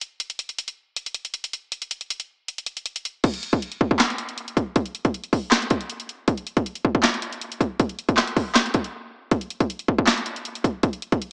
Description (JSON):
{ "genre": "hip hop", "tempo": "158 BPM", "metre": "4/4", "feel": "half-time", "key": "none", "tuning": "none", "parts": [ { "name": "trap drum kit", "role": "drums", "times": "0.0-11.3 s", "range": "crash cymbal, handclaps, hi-hat, kick drum, snare drum", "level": "-20 LUFS", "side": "equal", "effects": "overdrive, cassette tape" } ], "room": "moderate spring reverb, RT60 1.8 s, digital ambience", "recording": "home recording on cassette, small speaker sound", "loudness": "-22 LUFS", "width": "side -36 dB against mid", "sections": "0.0-3.2 A section; 3.2-11.3 B section", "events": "kick muted 2.5-3.2; break 8.9-9.3", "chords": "none" }